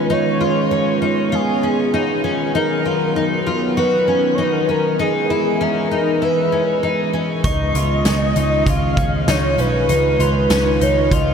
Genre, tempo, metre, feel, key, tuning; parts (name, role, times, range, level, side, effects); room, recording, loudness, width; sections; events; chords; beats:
dream pop; 98 BPM; 4/4; straight; Db mixolydian; A4 = 439 Hz
warm velvety synth lead; melody; 0.0-11.3 s; Ab4 to F5; -19 LUFS; equal; chorus, analog delay
warm analog pad; sustained chords; 0.0-11.3 s; Eb3 to D#5; -21 LUFS; right 1 dB; chorus
fingerpicked twelve-string acoustic guitar; arpeggios; 0.0-11.3 s; Db4 to Gb4; -22 LUFS; left 3 dB; lush chorus, analog delay
vintage muted picked electric bass; bass; 7.4-11.3 s; Cb2 to Db2; -20 LUFS; right 1 dB
huge arena drum kit; drums; 7.4-11.3 s; hi-hat, kick drum, snare drum; -22 LUFS; equal
glockenspiel with brass mallets; texture; 7.4-9.6 s; Db6; -33 LUFS; right 4 dB; stereo widening, analog delay
wet huge ambient reverb, RT60 7.6 s; dreamy mix soaked in reverb; -15 LUFS; side -6 dB against mid
0.0-11.3 A section
0.0 Db9; 2.5 Cbmaj7/Eb; 5.0 Emaj7; 7.4 Db9
| 0.10 0.71 1.32 1.93 | 2.54 3.16 3.77 4.38 | 4.99 5.61 6.22 6.83 | 7.44 8.06 8.67 9.28 | 9.89 10.51 11.12